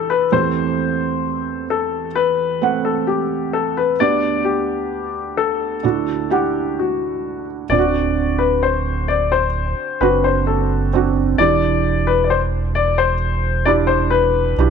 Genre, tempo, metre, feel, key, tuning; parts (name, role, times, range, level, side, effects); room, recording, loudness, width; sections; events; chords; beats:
pop; 65 BPM; 4/4; straight; A4 = 440 Hz
warm baby grand piano; melody; 0.0-14.7 s; F#4 to D5; -19 LUFS; left 9 dB
felt-muted upright piano; accompaniment; 0.0-14.7 s; D2 to F#5; -21 LUFS; right 12 dB
sub bass with octave; bass; 7.7-14.7 s; D1 to B1; -20 LUFS; right 1 dB
moderate echo chamber reverb, RT60 1.9 s, small room ambience; 1960s-style stereo with parts hard left and right; -16 LUFS; side -6 dB against mid
0.0-7.7 A section; 7.7-14.7 B section
0.3 Am7/E; 4.0 G/D; 5.8 Dadd9; 7.7 D7; 11.4 Em7
| 0.33 1.24 2.15 3.07 | 3.98 4.91 5.83 6.77 | 7.70 8.63 9.55 10.47 | 11.39 12.30 13.21 14.13